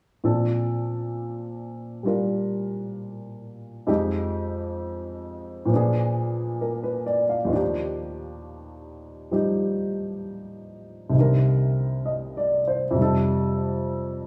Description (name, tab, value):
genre	jazz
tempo	66 BPM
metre	4/4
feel	swing 66% on 8ths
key	Bb major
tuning	A4 = 440 Hz
part	warm baby grand piano	accompaniment	0.2-14.3 s	C2 to F5	-26 LUFS	equal	none
room	wet stone room reverb, RT60 1.1 s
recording	band playing live in one room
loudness	-25 LUFS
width	mono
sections	0.2-14.3 A section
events	none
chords	0.2 Bbmaj9; 3.9 Fm9; 5.7 Bb7b9; 7.5 Ebmaj9; 11.1 Cm9; 13.0 F9